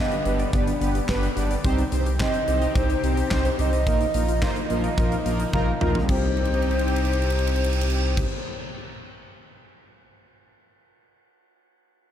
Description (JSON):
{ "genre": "synth-pop", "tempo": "108 BPM", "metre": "4/4", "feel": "straight", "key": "C minor", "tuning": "A4 = 440 Hz", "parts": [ { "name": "mellow hollow polished pan flute", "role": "melody", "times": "0.0-8.2 s", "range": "C5 to Eb5", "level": "-29 LUFS", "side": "left 1 dB", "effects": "tape echo" }, { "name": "analog synth brass", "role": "accompaniment", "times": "0.0-8.2 s", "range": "Bb3 to D5", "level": "-29 LUFS", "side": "right 2 dB", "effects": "chorus, tape echo" }, { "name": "lush unison pad", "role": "sustained chords", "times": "0.0-8.2 s", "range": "C3 to G4", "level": "-32 LUFS", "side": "equal", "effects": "chorus, phaser" }, { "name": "warbly dusty pluck", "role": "arpeggios", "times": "0.0-8.3 s", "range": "F3 to Eb5", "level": "-33 LUFS", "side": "left 7 dB", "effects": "chorus, tape echo" }, { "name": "huge arena drum kit", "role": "drums", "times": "0.1-9.8 s", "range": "crash cymbal, handclaps, hi-hat, kick drum, ride cymbal, snare drum, toms", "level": "-27 LUFS", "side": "equal", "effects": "none" }, { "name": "smooth synth bass", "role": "bass", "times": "0.3-8.2 s", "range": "G1 to C2", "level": "-24 LUFS", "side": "equal", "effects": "none" } ], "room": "light reverb, small room ambience", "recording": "echo-heavy mix", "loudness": "-20 LUFS", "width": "side -10 dB against mid", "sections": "0.0-6.1 A section; 6.1-8.3 B section", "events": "drum fill 5.5-6.1, 6.4-8.2", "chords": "0.0 G; 1.6 Cm; 3.9 Bbsus4; 6.1 Cm" }